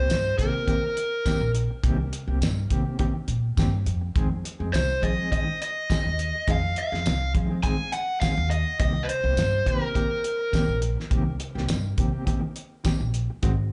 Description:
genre	straight-eighth soul blues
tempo	104 BPM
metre	4/4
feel	swing 55% on 16ths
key	C minor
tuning	A4 = 441 Hz
part	overdriven electric guitar	melody	0.0-10.8 s	Bb4 to Ab5	-30 LUFS	equal	slapback echo
part	mellow electric guitar	stabs	0.0-13.6 s	Eb3 to Ab4	-33 LUFS	equal	tremolo, slapback echo
part	upright bass	bass	0.0-13.7 s	Ab1 to F3	-29 LUFS	equal	none
part	cloth-damped thuddy drum kit	drums	0.1-13.6 s	hi-hat, kick drum, snare drum, tambourine	-29 LUFS	equal	none
room	studio reverb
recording	live gig heard through the venue's PA, club reverb, nothing above 10.4 kHz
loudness	-25 LUFS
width	mono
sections	0.0-13.7 A section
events	none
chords	0.0 Cm7; 4.2 Fm7; 8.8 Cm7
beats	0.09 0.67 1.25 | 1.83 2.41 2.99 3.57 | 4.15 4.73 5.31 5.89 | 6.47 7.05 7.63 8.21 | 8.79 9.37 9.95 10.53 | 11.11 11.69 12.27 12.85 | 13.43

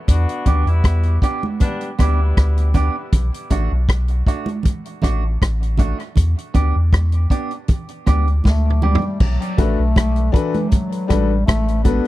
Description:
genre	dub reggae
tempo	79 BPM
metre	4/4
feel	straight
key	B minor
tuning	A4 = 439 Hz
part	warm horn section	second line	0.1-2.7 s	G3 to F#4	-29 LUFS	left 3 dB	dub echo
part	soft dub sub bass	bass	0.1-12.0 s	A1 to E2	-17 LUFS	equal	none
part	vintage drum kit	drums	0.1-12.1 s	crash cymbal, hi-hat, kick drum, rim click, snare drum, toms	-16 LUFS	equal	none
part	congas	percussion	0.1-12.0 s	none	-27 LUFS	right 4 dB	dub echo
part	clean electric guitar	accompaniment	0.5-9.0 s	A3 to G4	-27 LUFS	right 4 dB	spring reverb, dub echo
part	mellow bass clarinet	melody	8.5-12.1 s	E3 to B3	-22 LUFS	left 3 dB	dub echo
part	clear concert grand piano	stabs	9.6-12.1 s	D4 to B4	-24 LUFS	left 7 dB	dub echo
room	little or no reverb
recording	dry, close 1970s-style studio recording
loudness	-16 LUFS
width	side -16 dB against mid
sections	0.0-9.2 A section; 9.2-12.1 B section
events	drum fill 8.4-9.2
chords	0.1 Em7; 3.1 Bm7; 6.2 Em7; 9.2 Bm7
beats	| 0.08 0.84 1.60 2.36 | 3.12 3.88 4.64 5.40 | 6.17 6.92 7.68 8.44 | 9.20 9.96 10.72 11.47

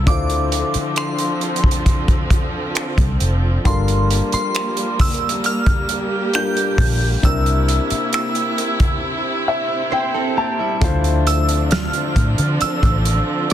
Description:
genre	contemporary R&B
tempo	67 BPM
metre	4/4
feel	straight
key	D minor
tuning	A4 = 440 Hz
part	glassy synth bell	melody	0.0-13.5 s	C6 to G6	-24 LUFS	right 2 dB	chorus, tape echo
part	warm concert grand piano	accompaniment	0.0-13.5 s	C3 to A5	-24 LUFS	left 5 dB	none
part	rich studio string section	sustained chords	0.0-13.5 s	C3 to G4	-24 LUFS	right 2 dB	sidechain pumping
part	vintage muted fingered electric bass	bass	0.0-13.2 s	F1 to D3	-18 LUFS	equal	none
part	warm soul drum kit	drums	0.1-13.5 s	finger snaps, hi-hat, kick drum, snare drum	-19 LUFS	equal	soft clipping on snare
part	direct-recorded clean electric guitar	arpeggios	9.9-11.0 s	G3 to C5	-24 LUFS	right 6 dB	wide subtle chorus, tape echo
room	studio reverb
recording	dense, heavily limited modern master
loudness	-16 LUFS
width	side -11 dB against mid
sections	0.0-10.8 A section; 10.8-13.5 B section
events	break 9.0-10.8; grand piano fill 9.0-10.8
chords	0.1 Dm7; 3.7 Gm7; 7.2 C7; 10.8 Dm9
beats	| 0.07 0.97 1.86 2.76 | 3.65 4.55 5.44 6.34 | 7.24 8.13 9.03 9.92 | 10.82 11.71 12.61 13.50

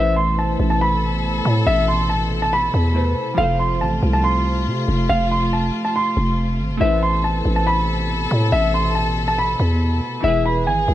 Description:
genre	hip hop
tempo	140 BPM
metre	4/4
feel	half-time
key	A harmonic minor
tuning	A4 = 436 Hz
part	dark concert grand piano	melody	0.0-10.9 s	E5 to C6	-21 LUFS	equal	low-pass filter
part	glassy digital keys	accompaniment	0.0-10.9 s	E3 to C5	-28 LUFS	right 1 dB	chorus, low-pass filter
part	dark chamber string section	sustained chords	0.0-10.9 s	B2 to A4	-25 LUFS	left 1 dB	none
part	growling 808-style bass	bass	0.0-10.9 s	E1 to C3	-20 LUFS	equal	none
room	studio reverb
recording	vinyl crackle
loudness	-16 LUFS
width	side -13 dB against mid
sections	0.0-10.9 A section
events	none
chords	0.0 Amadd9; 3.4 F; 6.8 Amadd9; 10.2 E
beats	0.38 0.81 1.24 | 1.67 2.10 2.52 2.95 | 3.38 3.81 4.24 4.67 | 5.09 5.52 5.95 6.38 | 6.81 7.24 7.67 8.10 | 8.52 8.95 9.38 9.81 | 10.24 10.67

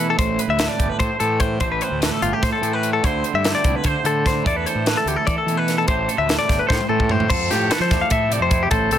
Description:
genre	math rock and midwest emo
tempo	295 BPM (eighths)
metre	7/8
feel	straight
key	A minor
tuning	A4 = 440 Hz
part	twangy electric guitar	accompaniment	0.0-9.0 s	A2 to C5	-24 LUFS	right 10 dB	wide subtle chorus
part	direct-recorded clean electric guitar	arpeggios	0.0-9.0 s	F4 to F5	-21 LUFS	left 6 dB	none
part	fuzz fingered electric bass	bass	0.0-9.0 s	G1 to F3	-24 LUFS	equal	overdrive
part	crisp fusion drum kit	drums	0.2-9.0 s	crash cymbal, hi-hat, kick drum, snare drum, toms	-22 LUFS	equal	none
room	light reverb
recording	dense, heavily limited modern master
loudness	-17 LUFS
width	side -10 dB against mid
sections	0.0-7.3 A section; 7.3-9.0 B section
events	drum fill 6.7-7.3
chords	0.2 Am7; 3.0 Dsus2; 4.5 E7sus4; 5.9 Am7; 7.3 Fmaj9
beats	| 0.19 0.39 0.60 0.80 1.00 1.21 1.41 | 1.62 1.82 2.02 2.23 2.43 2.63 2.84 | 3.04 3.25 3.45 3.65 3.86 4.06 4.26 | 4.47 4.67 4.87 5.08 5.28 5.48 5.68 | 5.89 6.09 6.29 6.50 6.70 6.90 7.10 | 7.30 7.51 7.71 7.91 8.11 8.31 8.52 | 8.72 8.92

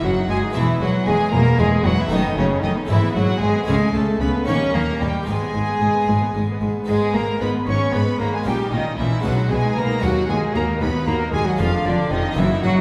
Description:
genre	classical, baroque-style concerto movement with solo episodes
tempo	76 BPM (dotted quarters)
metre	6/8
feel	straight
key	G# minor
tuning	A4 = 441 Hz
part	rich chamber violin section	melody	0.0-12.7 s	C#5 to C#6	-31 LUFS	equal	none
part	warm cello	melody	0.0-12.8 s	C#3 to C#4	-25 LUFS	equal	none
part	warm chamber violin section	second line	0.0-12.8 s	C#4 to C#5	-29 LUFS	equal	none
part	dark chamber viola section	accompaniment	0.0-12.8 s	G3 to F#4	-31 LUFS	equal	none
part	harpsichord	accompaniment	0.0-12.8 s	D#2 to G#4	-31 LUFS	equal	none
part	rich chamber cello section	bass	0.0-12.7 s	D#2 to D#3	-27 LUFS	equal	none
part	rich chamber double bass section	bass	0.0-12.7 s	E1 to D#2	-27 LUFS	equal	none
room	wet scoring stage reverb, RT60 1.8 s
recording	heard from further back in the room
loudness	-20 LUFS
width	mono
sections	0.0-6.9 A section; 6.9-12.8 A section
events	none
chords	0.0 D#m/F#; 0.5 E; 2.1 B5/F#; 2.9 E/G#; 3.7 A/C#; 4.5 D#; 5.3 G#m; 8.5 D#5/A#; 9.2 G#m/B; 10.0 D#m; 11.6 A#7/E#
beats	| 0.55 1.33 | 2.11 2.89 | 3.68 4.47 | 5.27 6.08 | 6.88 7.67 | 8.46 9.24 | 10.03 10.81 | 11.59 12.37

